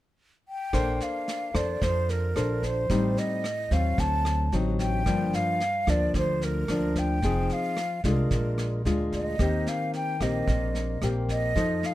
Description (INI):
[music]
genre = bossa nova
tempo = 111 BPM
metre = 4/4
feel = straight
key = Bb major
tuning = A4 = 440 Hz
[part]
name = mellow hollow concert flute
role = melody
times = 0.5-11.9 s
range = Bb4 to A5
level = -30 LUFS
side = equal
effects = none
[part]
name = nylon-string guitar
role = accompaniment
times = 0.7-11.9 s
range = G2 to C5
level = -28 LUFS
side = left 2 dB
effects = none
[part]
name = upright bass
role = bass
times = 0.7-11.8 s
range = F1 to F2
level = -28 LUFS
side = right 1 dB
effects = none
[part]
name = vintage brush drum kit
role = drums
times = 0.7-11.9 s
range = kick drum, rim click, snare drum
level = -33 LUFS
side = right 1 dB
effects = none
[sound]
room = little or no reverb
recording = close, detailed microphones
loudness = -24 LUFS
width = side -15 dB against mid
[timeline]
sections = 0.7-11.9 A section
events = none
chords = 0.0 N.C.; 0.7 Bbmaj9; 2.9 Am7b5; 4.0 D7b9; 5.1 Gm7; 7.2 Fm7; 8.3 Bb7; 9.4 Eb6